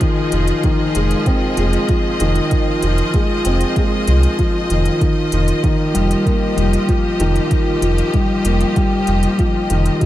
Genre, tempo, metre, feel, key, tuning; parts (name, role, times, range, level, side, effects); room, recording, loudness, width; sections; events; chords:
piano and strings electronica; 96 BPM; 4/4; straight; A4 = 441 Hz
bright studio string section; sustained chords; 0.0-10.1 s; F3 to Eb5; -22 LUFS; equal; sidechain pumping
felt-muted upright piano; riff; 0.0-10.1 s; Eb3 to C4; -18 LUFS; left 1 dB; ping-pong delay
electronic hi-hat; drums; 0.0-10.1 s; -29 LUFS; left 1 dB; small room ambience
electronic kick drum; drums; 0.0-10.1 s; -18 LUFS; equal; small room ambience
round analog bass; bass; 0.3-9.9 s; F1 to C2; -17 LUFS; equal; sidechain pumping
light reverb, small room ambience; dark, warm production; -14 LUFS; side -14 dB against mid
0.0-10.1 A section
0.0 Fm7; 5.0 Ebadd9/F